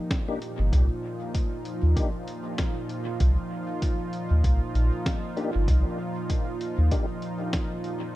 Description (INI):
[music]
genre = ambient dub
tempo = 97 BPM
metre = 4/4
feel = swing 58% on 16ths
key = C minor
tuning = A4 = 440 Hz
[part]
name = warm analog pad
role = sustained chords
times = 0.0-8.2 s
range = Bb2 to G4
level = -31 LUFS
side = right 1 dB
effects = chorus
[part]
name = electronic kick drum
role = drums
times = 0.1-7.7 s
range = none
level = -27 LUFS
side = equal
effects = studio reverb
[part]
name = lo-fi sampler-style drum kit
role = drums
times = 0.1-8.0 s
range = hi-hat, snare drum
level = -35 LUFS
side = equal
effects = studio reverb, dub echo
[part]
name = tonewheel organ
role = stabs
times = 0.3-7.1 s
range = Bb3 to G4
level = -36 LUFS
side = left 3 dB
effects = chorus vibrato, slow rotary speaker, dub echo
[part]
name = warm sub bass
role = bass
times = 0.6-6.9 s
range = G1 to Eb2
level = -21 LUFS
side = equal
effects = tube saturation
[sound]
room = digital ambience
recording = dark, warm production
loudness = -24 LUFS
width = side -16 dB against mid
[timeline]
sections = 0.0-8.2 A section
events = none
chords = 0.0 Cm7 (rootless)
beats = 0.11 | 0.73 1.35 1.97 2.58 | 3.20 3.82 4.44 5.06 | 5.68 6.29 6.91 7.53 | 8.15